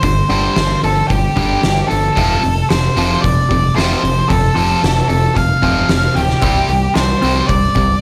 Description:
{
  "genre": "quiet-loud alternative rock",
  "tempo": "113 BPM",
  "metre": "4/4",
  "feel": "straight",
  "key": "unclear",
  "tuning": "A4 = 439 Hz",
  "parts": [
    { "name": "octave-fuzz lead guitar", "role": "melody", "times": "0.0-8.0 s", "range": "G4 to F5", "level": "-20 LUFS", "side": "equal", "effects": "distortion" },
    { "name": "twangy electric guitar", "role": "arpeggios", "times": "0.0-8.0 s", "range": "F2 to C4", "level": "-26 LUFS", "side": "equal", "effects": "phaser" },
    { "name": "distorted electric guitar", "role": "riff", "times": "0.0-8.0 s", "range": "F2 to C4", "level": "-20 LUFS", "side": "equal", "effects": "overdrive" },
    { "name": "growling picked electric bass", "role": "bass", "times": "0.0-7.9 s", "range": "D1 to C2", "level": "-22 LUFS", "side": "equal", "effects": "overdrive" },
    { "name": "oversized low-tuned drum kit", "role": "drums", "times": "0.0-7.9 s", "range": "hi-hat, kick drum, snare drum", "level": "-21 LUFS", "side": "equal", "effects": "none" }
  ],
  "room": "light reverb",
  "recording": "none",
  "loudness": "-14 LUFS",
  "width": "mono",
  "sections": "0.0-8.0 A section",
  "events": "none",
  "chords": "0.0 Gsus4; 2.2 F; 6.4 C5"
}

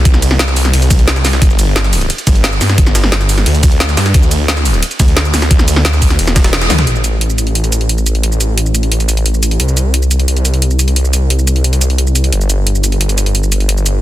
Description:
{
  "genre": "dark technical drum and bass",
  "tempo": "176 BPM",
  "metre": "4/4",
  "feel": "straight",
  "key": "unclear",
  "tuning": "A4 = 439 Hz",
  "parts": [
    { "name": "snarling distorted saw bass", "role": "bass", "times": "0.0-14.0 s", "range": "E1 to G2", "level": "-12 LUFS", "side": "equal", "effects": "distortion, overdrive" },
    { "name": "drum and bass drum kit", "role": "drums", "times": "0.1-13.9 s", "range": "hi-hat, ride cymbal, shaker, snare drum, toms", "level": "-16 LUFS", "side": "equal", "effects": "overdrive" },
    { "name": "electronic kick drum", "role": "drums", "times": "0.1-6.4 s", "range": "none", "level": "-10 LUFS", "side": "equal", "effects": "overdrive" },
    { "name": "jungle sampler-style drum kit", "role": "drums", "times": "0.1-6.9 s", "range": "hi-hat, ride cymbal, snare drum", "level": "-24 LUFS", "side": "right 1 dB", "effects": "none" }
  ],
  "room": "little or no reverb",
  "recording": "dense, heavily limited modern master",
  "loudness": "-10 LUFS",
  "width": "side -14 dB against mid",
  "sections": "0.0-6.9 A section; 6.9-14.0 B section",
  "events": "drop 0.0-6.9; band accent 6.5; drum fill 6.7",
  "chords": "none"
}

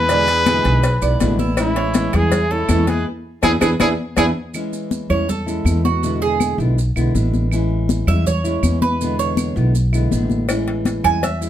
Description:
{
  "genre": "latin, Cuban son and guajira",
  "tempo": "162 BPM",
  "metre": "4/4",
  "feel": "straight",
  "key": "A major",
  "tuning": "A4 = 441 Hz",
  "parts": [
    { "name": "breathy trumpet", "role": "melody", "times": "0.0-4.3 s", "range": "E4 to B4", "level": "-20 LUFS", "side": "equal", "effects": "none" },
    { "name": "dark studio violin section", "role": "second line", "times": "0.0-4.3 s", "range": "C#4 to G#4", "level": "-26 LUFS", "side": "equal", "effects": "none" },
    { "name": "nylon-string guitar", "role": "accompaniment", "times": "0.0-11.5 s", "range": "B2 to E4", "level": "-24 LUFS", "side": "left 1 dB", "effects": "none" },
    { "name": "Cuban tres", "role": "arpeggios", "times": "0.0-11.5 s", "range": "D4 to G#5", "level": "-23 LUFS", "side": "right 7 dB", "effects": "none" },
    { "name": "upright bass", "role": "bass", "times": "0.0-11.5 s", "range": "A1 to E2", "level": "-19 LUFS", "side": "equal", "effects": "none" },
    { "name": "congas", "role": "percussion", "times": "0.1-11.5 s", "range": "none", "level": "-23 LUFS", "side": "left 3 dB", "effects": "none" },
    { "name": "cowbell", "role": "percussion", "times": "0.1-4.3, 10.5-11.4 s", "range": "none", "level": "-27 LUFS", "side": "left 5 dB", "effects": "none" },
    { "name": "maracas", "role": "percussion", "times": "0.1-11.5 s", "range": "none", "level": "-34 LUFS", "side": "right 6 dB", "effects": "none" },
    { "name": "claves", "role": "percussion", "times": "0.5-11.2 s", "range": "none", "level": "-31 LUFS", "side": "right 5 dB", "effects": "none" }
  ],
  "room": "light reverb",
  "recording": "close, detailed microphones",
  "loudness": "-16 LUFS",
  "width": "side -11 dB against mid",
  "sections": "0.0-4.5 A section; 4.5-11.5 B section",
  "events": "band accent 3.1-4.5; Cuban tres solo 4.5-11.5",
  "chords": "0.1 E7; 1.6 Amaj7; 3.1 E7; 4.5 Amaj7; 6.0 E7; 7.5 Amaj7; 9.0 E7; 10.5 Amaj7"
}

